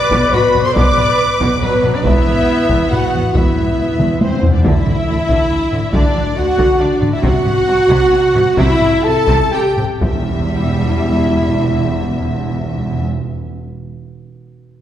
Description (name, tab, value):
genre	cinematic, epic orchestral film score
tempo	118-139 BPM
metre	3/4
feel	straight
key	E minor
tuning	A4 = 440 Hz
part	rich studio violin section	melody	0.0-13.0 s	B4 to D6	-26 LUFS	left 3 dB	none
part	clear studio violin section	second line	0.0-13.0 s	B4 to D6	-26 LUFS	left 1 dB	none
part	silver concert flute	second line	0.0-13.0 s	B4 to D6	-24 LUFS	left 1 dB	none
part	warm studio viola section	accompaniment	0.0-13.0 s	F#3 to B4	-21 LUFS	right 1 dB	none
part	dark French horn section	sustained chords	0.0-13.0 s	B3 to D5	-17 LUFS	equal	none
part	timpani	percussion	0.0-4.6, 10.0-13.1 s	E2	-22 LUFS	right 1 dB	none
part	rich symphonic cello section	bass	0.1-13.0 s	E2 to D3	-22 LUFS	right 2 dB	none
part	rich symphonic double bass section	bass	0.1-13.0 s	E1 to D2	-23 LUFS	right 2 dB	none
part	taiko ensemble	drums	0.1-11.0 s	none	-18 LUFS	equal	none
room	wet scoring stage reverb, RT60 1.7 s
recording	heard from further back in the room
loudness	-12 LUFS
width	side -11 dB against mid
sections	0.0-4.6 A section; 4.6-10.0 B section; 10.0-13.1 C section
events	timpani fill 2.1-4.6; drum fill 4.0-4.6; slowing down 6.6-10.0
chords	0.0 Bm; 2.1 Esus2; 4.6 Dsus2; 7.2 Am/C; 10.0 Em